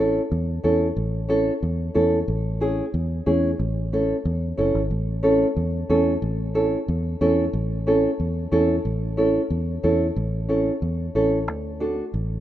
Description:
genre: latin, cumbia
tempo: 183 BPM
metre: 4/4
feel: straight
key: A major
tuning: A4 = 441 Hz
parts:
  - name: nylon-string guitar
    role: accompaniment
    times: 0.0-12.0 s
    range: C#4 to A4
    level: -22 LUFS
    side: right 1 dB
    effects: none
  - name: fingered electric bass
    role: bass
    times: 0.0-12.4 s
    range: F#1 to E2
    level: -25 LUFS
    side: equal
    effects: none
room: moderate plate reverb, RT60 3.4 s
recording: rough home demo mix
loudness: -20 LUFS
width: side -12 dB against mid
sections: 0.0-10.2 A section; 10.2-12.4 B section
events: none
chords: 0.0 A; 11.5 D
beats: 0.31 0.64 | 0.97 1.30 1.63 1.96 | 2.29 2.61 2.94 3.27 | 3.60 3.93 4.25 4.58 | 4.91 5.24 5.57 5.90 | 6.22 6.55 6.88 7.21 | 7.54 7.87 8.19 8.52 | 8.85 9.18 9.51 9.84 | 10.16 10.49 10.82 11.15 | 11.48 11.81 12.14

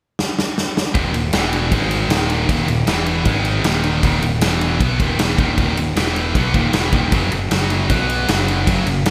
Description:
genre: hard rock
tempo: 156 BPM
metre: 4/4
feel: straight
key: Eb minor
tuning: A4 = 440 Hz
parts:
  - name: huge arena drum kit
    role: drums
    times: 0.2-9.1 s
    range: kick drum, ride cymbal, snare drum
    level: -22 LUFS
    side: equal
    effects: gated reverb
  - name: heavy high-gain guitar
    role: riff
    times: 0.9-9.1 s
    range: Eb2 to Cb4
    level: -24 LUFS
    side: equal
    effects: distortion
  - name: overdriven semi-hollow guitar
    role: riff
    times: 0.9-9.1 s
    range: Eb2 to Cb4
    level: -26 LUFS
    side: equal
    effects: none
  - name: growling picked electric bass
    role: bass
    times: 0.9-9.1 s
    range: Eb1 to Cb2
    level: -24 LUFS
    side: equal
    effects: overdrive
room: moderate lush hall reverb, RT60 1.8 s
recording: bright 1980s-style digital production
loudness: -18 LUFS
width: mono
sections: 0.9-9.1 A section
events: drum fill 0.2-0.9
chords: 0.0 N.C.; 0.9 Eb5; 1.3 E5; 1.7 Ab5; 2.1 Eb5; 2.9 E5; 3.3 Ab5; 3.6 Eb5; 4.4 E5; 4.8 Ebm; 6.0 E5; 6.3 Ebm; 7.1 Gb5; 7.9 B5; 8.3 Gb5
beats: 0.18 0.56 | 0.95 1.33 1.72 2.11 | 2.49 2.88 3.26 3.65 | 4.03 4.42 4.80 5.19 | 5.58 5.96 6.35 6.74 | 7.12 7.51 7.90 8.28 | 8.67 9.06

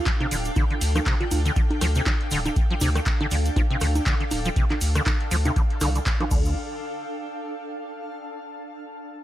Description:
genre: acid house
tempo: 120 BPM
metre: 4/4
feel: swing 57% on 16ths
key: D minor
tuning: A4 = 441 Hz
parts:
  - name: bell-like FM electric piano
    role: melody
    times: 0.0-1.4 s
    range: F4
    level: -35 LUFS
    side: right 6 dB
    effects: chorus, tape echo
  - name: granular cloud pad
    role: texture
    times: 0.0-8.5 s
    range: D4 to A5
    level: -32 LUFS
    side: equal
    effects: built-in reverb, sidechain pumping
  - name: deep acid bass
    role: riff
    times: 0.1-6.5 s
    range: C3 to F3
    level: -29 LUFS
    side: equal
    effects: overdrive, ensemble chorus, tape echo
  - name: electro analog drum machine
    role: drums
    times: 0.1-6.4 s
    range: congas, crash cymbal, handclaps, hi-hat, rim click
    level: -29 LUFS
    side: right 1 dB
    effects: none
  - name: electronic kick drum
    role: drums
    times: 0.1-6.4 s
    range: none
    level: -24 LUFS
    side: equal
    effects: none
  - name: egg shaker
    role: percussion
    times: 0.1-6.5 s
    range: none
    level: -38 LUFS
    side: right 3 dB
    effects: none
  - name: saturated sub bass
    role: bass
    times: 0.3-6.5 s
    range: D1 to D2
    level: -24 LUFS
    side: equal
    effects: sidechain pumping
room: little or no reverb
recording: none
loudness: -21 LUFS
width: side -13 dB against mid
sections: 0.0-6.6 A section; 6.6-8.6 B section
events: drop 0.0-6.6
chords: 0.0 Dm; 6.3 D5; 6.6 Dm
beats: 0.06 | 0.56 1.06 1.56 2.06 | 2.56 3.06 3.56 4.06 | 4.56 5.06 5.56 6.06 | 6.56 7.06 7.56 8.06

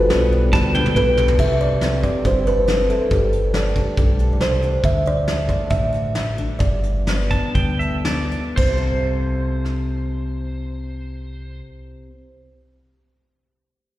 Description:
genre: honky-tonk and classic country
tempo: 112-140 BPM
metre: 4/4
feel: straight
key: C major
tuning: A4 = 440 Hz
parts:
  - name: kalimba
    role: melody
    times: 0.0-11.6 s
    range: F4 to E5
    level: -21 LUFS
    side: right 1 dB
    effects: slapback echo
  - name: honky-tonk upright piano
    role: accompaniment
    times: 0.0-4.8 s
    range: C4 to B4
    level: -30 LUFS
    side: right 4 dB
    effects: slapback echo
  - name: picked steel-string acoustic guitar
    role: accompaniment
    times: 0.0-12.3 s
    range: G2 to C5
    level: -27 LUFS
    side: left 3 dB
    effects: none
  - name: deep dub fingered electric bass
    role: bass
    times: 0.0-11.6 s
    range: G1 to D2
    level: -21 LUFS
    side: equal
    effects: none
  - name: soft brush drum kit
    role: drums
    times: 0.1-9.8 s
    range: crash cymbal, hi-hat, kick drum, rim click, snare drum, toms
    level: -22 LUFS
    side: equal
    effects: none
  - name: pedal steel guitar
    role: second line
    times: 0.5-1.3, 7.3-11.6 s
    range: C5 to A5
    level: -27 LUFS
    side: right 2 dB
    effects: slapback echo
room: light reverb, studio reverb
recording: live gig heard through the venue's PA, recital hall reverb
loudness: -17 LUFS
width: side -15 dB against mid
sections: 0.0-1.4 A section; 1.4-8.6 B section; 8.6-12.9 C section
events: drum fill 0.5-1.4; slowing down 4.8-8.6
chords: 0.0 Gadd9; 1.4 C6; 3.1 Gsus2; 4.8 D; 6.6 Gadd9; 8.6 C6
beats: 0.10 0.54 0.96 | 1.39 1.82 2.25 2.68 | 3.11 3.54 3.98 4.41 | 4.84 5.27 5.71 6.15 | 6.60 7.07 7.55 8.06 | 8.58 9.12 9.66 10.19 | 10.73 11.27 11.80

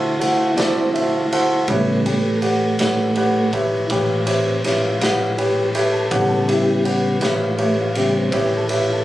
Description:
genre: slow blues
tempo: 54 BPM (dotted quarters)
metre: 12/8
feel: straight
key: unclear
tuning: A4 = 442 Hz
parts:
  - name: warm concert grand piano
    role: accompaniment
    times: 0.0-9.0 s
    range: F#4 to G5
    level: -20 LUFS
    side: right 1 dB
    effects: none
  - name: mellow tonewheel organ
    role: sustained chords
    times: 0.0-9.0 s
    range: C#3 to A4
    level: -21 LUFS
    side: equal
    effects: overdrive, chorus vibrato, slow rotary speaker
  - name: upright bass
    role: bass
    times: 0.0-9.0 s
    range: A1 to D2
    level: -26 LUFS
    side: equal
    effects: none
  - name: raw garage drum kit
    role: drums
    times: 0.2-8.9 s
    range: kick drum, ride cymbal, snare drum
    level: -25 LUFS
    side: equal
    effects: none
room: moderate club reverb, RT60 0.7 s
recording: recorded on a phone in the room, club reverb, compression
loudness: -16 LUFS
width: side -14 dB against mid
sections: 0.0-9.0 A section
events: tonewheel organ solo 0.0-9.0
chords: 0.0 D9; 1.7 A9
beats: 0.57 | 1.68 2.79 3.90 5.01 | 6.11 7.22 8.33

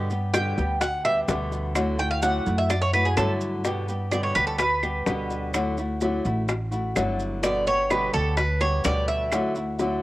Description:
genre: latin, Cuban son and guajira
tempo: 127 BPM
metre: 4/4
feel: straight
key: unclear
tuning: A4 = 440 Hz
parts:
  - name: flamenco guitar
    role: accompaniment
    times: 0.0-10.0 s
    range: B2 to G4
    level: -28 LUFS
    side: left 1 dB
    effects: cassette tape
  - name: upright bass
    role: bass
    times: 0.0-10.0 s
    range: G1 to G2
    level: -28 LUFS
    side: equal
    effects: none
  - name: maracas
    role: percussion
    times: 0.1-10.0 s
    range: none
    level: -39 LUFS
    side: right 4 dB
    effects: none
  - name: Cuban tres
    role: arpeggios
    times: 0.3-9.8 s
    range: G#4 to G5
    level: -24 LUFS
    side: right 1 dB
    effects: cassette tape
  - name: bongos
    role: percussion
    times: 0.3-10.0 s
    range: none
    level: -30 LUFS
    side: left 3 dB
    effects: none
  - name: claves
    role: percussion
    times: 0.3-9.6 s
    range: none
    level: -33 LUFS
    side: right 5 dB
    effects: none
room: moderate spring reverb, RT60 2.1 s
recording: home recording on cassette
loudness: -22 LUFS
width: side -17 dB against mid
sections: 0.0-10.0 A section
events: Cuban tres solo 0.0-10.0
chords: 0.0 G; 1.8 Dadd9; 3.7 G; 5.5 Dadd9; 7.4 G; 9.3 Dadd9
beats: 0.34 0.81 1.29 | 1.76 2.23 2.71 3.18 | 3.65 4.12 4.60 5.07 | 5.54 6.01 6.49 6.96 | 7.43 7.91 8.38 8.85 | 9.32 9.79

